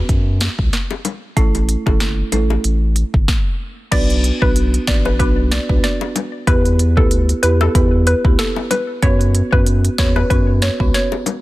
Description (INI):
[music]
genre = dancehall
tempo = 94 BPM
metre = 4/4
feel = swing 56% on 16ths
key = B minor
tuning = A4 = 440 Hz
[part]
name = saturated sub bass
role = bass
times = 0.0-10.9 s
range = G1 to F#2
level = -17 LUFS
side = equal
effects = none
[part]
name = afro-pop drum kit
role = drums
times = 0.1-11.4 s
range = crash cymbal, hi-hat, kick drum, rim click, snare drum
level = -17 LUFS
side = equal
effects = none
[part]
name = bongos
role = percussion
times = 0.4-11.4 s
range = none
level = -25 LUFS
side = left 8 dB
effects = none
[part]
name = marimba with medium mallets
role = accompaniment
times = 1.4-10.9 s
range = A3 to B4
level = -22 LUFS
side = right 2 dB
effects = none
[part]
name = hollow square pluck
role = melody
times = 3.9-11.4 s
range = A4 to D5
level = -22 LUFS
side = left 1 dB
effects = chorus, ping-pong delay
[sound]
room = little or no reverb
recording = dense, heavily limited modern master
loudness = -14 LUFS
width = side -18 dB against mid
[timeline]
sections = 0.0-3.9 A section; 3.9-11.4 B section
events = stop 3.3-3.9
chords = 0.0 N.C.; 1.4 A; 3.9 Bm; 6.5 Em; 9.0 F#sus4